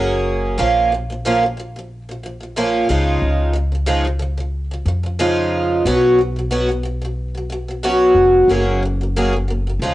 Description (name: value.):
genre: pop.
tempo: 91 BPM.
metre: 4/4.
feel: swing 55% on 16ths.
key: F# major.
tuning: A4 = 441 Hz.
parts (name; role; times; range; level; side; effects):
picked twelve-string acoustic guitar; accompaniment; 0.0-9.9 s; A#2 to G#4; -16 LUFS; equal; lush chorus, cassette tape.
upright bass; bass; 0.0-9.9 s; E#1 to E#2; -21 LUFS; equal; none.
room: light reverb.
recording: home recording on cassette, nothing above 10.5 kHz.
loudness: -15 LUFS.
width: side -16 dB against mid.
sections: 0.0-9.9 A section.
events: none.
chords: 0.0 F#add9; 0.6 A#m; 2.9 C#add9; 5.8 Bsus2; 8.5 F#add9.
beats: | 0.59 1.25 1.90 2.56 | 3.22 3.88 4.53 5.19 | 5.85 6.51 7.17 7.82 | 8.48 9.14 9.80.